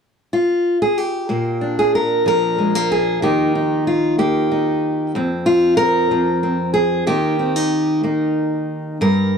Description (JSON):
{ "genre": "folk, solo fingerstyle acoustic guitar", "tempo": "62 BPM (dotted quarters)", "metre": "6/8", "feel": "straight", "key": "Bb mixolydian", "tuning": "A4 = 438 Hz", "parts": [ { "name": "fingerpicked steel-string acoustic guitar", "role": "solo", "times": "0.3-9.4 s", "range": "F2 to Bb4", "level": "-16 LUFS", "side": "equal", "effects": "none" } ], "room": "light reverb", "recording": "dark, warm production", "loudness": "-16 LUFS", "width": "side -6 dB against mid", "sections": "0.0-1.3 A section; 1.3-9.4 B section", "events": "none", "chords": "0.0 N.C.; 1.3 Bb; 3.2 Eb; 5.1 Bbsus2/F; 7.1 Eb", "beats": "0.32 | 1.29 2.26 | 3.22 4.18 | 5.14 6.10 | 7.07 8.04 | 9.01" }